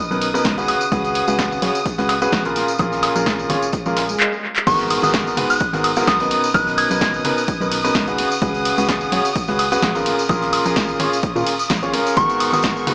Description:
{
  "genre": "piano house",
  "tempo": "128 BPM",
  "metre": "4/4",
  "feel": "swing 54% on 16ths",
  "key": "G# dorian",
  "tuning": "A4 = 439 Hz",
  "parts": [
    { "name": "dark studio violin section", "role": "sustained chords", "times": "0.0-12.9 s", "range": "C#6 to D#6", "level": "-29 LUFS", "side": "equal", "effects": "sidechain pumping" },
    { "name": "clear grand piano", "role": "riff", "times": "0.1-12.9 s", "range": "G#2 to C#5", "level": "-22 LUFS", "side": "equal", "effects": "sidechain pumping, tape echo" },
    { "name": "organ-like FM bass", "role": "bass", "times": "0.1-12.9 s", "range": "F#1 to A#2", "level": "-30 LUFS", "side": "equal", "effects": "sidechain pumping" },
    { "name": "tambourine", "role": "percussion", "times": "0.1-12.9 s", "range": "none", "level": "-35 LUFS", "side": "equal", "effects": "tape echo" },
    { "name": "breakbeat sampler-style drum kit", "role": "drums", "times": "0.2-12.9 s", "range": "hi-hat, snare drum", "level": "-34 LUFS", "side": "equal", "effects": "none" },
    { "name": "punchy analog drum machine", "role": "drums", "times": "0.2-12.9 s", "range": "crash cymbal, handclaps, hi-hat, ride cymbal, snare drum, woodblock", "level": "-25 LUFS", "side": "equal", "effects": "tape echo" },
    { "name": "electronic kick drum", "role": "drums", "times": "0.5-12.7 s", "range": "none", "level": "-28 LUFS", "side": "equal", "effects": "none" },
    { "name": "swell and impact", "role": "sound effects", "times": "3.9-6.5 s", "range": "none", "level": "-32 LUFS", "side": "equal", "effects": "none" },
    { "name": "soft synth bell", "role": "melody", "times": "4.7-7.1, 12.2-12.6 s", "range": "C#6 to G#6", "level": "-22 LUFS", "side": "equal", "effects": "chorus, tape echo" }
  ],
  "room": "wet spring reverb, RT60 1.4 s",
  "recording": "echo-heavy mix, small speaker sound",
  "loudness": "-19 LUFS",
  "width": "mono",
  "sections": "0.0-4.7 A section; 4.7-12.9 B section",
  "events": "swell 3.9-4.7; drum fill 4.2-4.7; drop 4.7-12.9; impact 4.7-6.5",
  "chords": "0.0 G#m9; 0.7 C#7sus4; 2.6 A#m7; 4.7 G#m9; 8.2 C#7sus4; 10.1 A#m7; 12.2 G#m9"
}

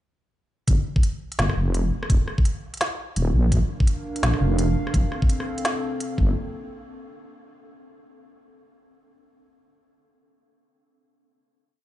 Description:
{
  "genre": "half-time drum and bass",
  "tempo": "169 BPM",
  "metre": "4/4",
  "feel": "swing 60% on 16ths, half-time",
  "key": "unclear",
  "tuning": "A4 = 440 Hz",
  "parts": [
    { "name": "deep soft wobble bass", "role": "bass", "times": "0.7-6.3 s", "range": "Eb1 to Bb1", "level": "-21 LUFS", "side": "equal", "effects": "chorus" },
    { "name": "electronic kick drum", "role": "drums", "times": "0.7-6.3 s", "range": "none", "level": "-20 LUFS", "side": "equal", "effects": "none" },
    { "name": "organic electronic drum kit", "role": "drums", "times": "0.7-6.1 s", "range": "hi-hat, rim click, snare drum", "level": "-29 LUFS", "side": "equal", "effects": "overdrive" },
    { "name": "dark analog pad", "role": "sustained chords", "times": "3.5-6.3 s", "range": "Bb3 to G5", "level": "-31 LUFS", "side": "right 2 dB", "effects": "chorus, sidechain pumping" }
  ],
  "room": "digital ambience",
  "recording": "played on a big sound system in a bare room, large studio reverb, nothing above 11.0 kHz",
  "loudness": "-21 LUFS",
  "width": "side -14 dB against mid",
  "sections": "0.7-6.4 drop; 6.4-7.8 final hit",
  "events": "drop 0.7-6.4",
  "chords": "0.7 Fsus2; 2.1 Eb5; 3.5 Bb; 4.9 F; 6.2 Gmadd9; 6.4 N.C."
}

